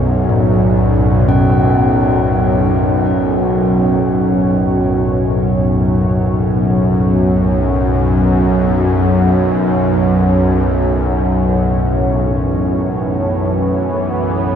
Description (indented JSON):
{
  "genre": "dark ambient drone",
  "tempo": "free time",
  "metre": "none",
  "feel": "none",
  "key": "unclear",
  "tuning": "A4 = 439 Hz",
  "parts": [
    { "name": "sweeping resonant pad", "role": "sustained chords", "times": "0.0-14.6 s", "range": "A2 to C#5", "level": "-22 LUFS", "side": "equal", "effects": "chorus" },
    { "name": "bowed-like drone", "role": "drone", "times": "0.0-14.6 s", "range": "B1 to F#2", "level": "-13 LUFS", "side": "equal", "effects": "built-in reverb" },
    { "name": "bronze singing bowl", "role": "arpeggios", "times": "0.3-8.3 s", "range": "A2 to C#4", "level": "-20 LUFS", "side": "left 1 dB", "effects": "diffuse ambient delay" }
  ],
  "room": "wet huge ambient reverb, RT60 7.1 s",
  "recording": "none",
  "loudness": "-12 LUFS",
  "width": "side -8 dB against mid",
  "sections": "0.0-14.6 A section",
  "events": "fade-in on analog synth pad 0.0-14.6",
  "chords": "0.0 Bsus2; 11.0 A"
}